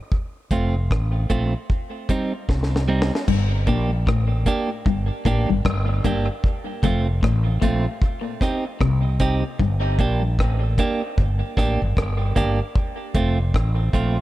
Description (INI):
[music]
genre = dub reggae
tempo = 76 BPM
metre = 4/4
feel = swing 61% on 16ths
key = G minor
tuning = A4 = 440 Hz
[part]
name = deep reggae drum kit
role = drums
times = 0.1-14.2 s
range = crash cymbal, hi-hat, kick drum, rim click, snare drum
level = -23 LUFS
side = equal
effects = none
[part]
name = clean electric guitar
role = accompaniment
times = 0.5-14.2 s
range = G3 to G4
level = -26 LUFS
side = right 3 dB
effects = dub echo
[part]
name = mellow fretless electric bass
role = bass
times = 0.5-14.2 s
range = F1 to C2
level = -21 LUFS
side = equal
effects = none
[part]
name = electric guitar at the edge of break-up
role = riff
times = 3.3-9.8 s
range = F2 to C3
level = -27 LUFS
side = left 6 dB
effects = phaser, dub echo
[sound]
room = light reverb, small room ambience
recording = echo-heavy mix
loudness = -19 LUFS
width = side -16 dB against mid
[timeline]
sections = 0.0-3.3 A section; 3.3-14.2 B section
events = drum fill 2.5-3.3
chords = 0.1 F; 1.7 Cm; 3.3 Gm; 6.4 F; 8.0 Cm; 9.6 Gm; 12.8 F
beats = | 0.12 0.91 1.70 2.49 | 3.28 4.07 4.86 5.65 | 6.44 7.23 8.02 8.80 | 9.60 10.38 11.17 11.96 | 12.75 13.54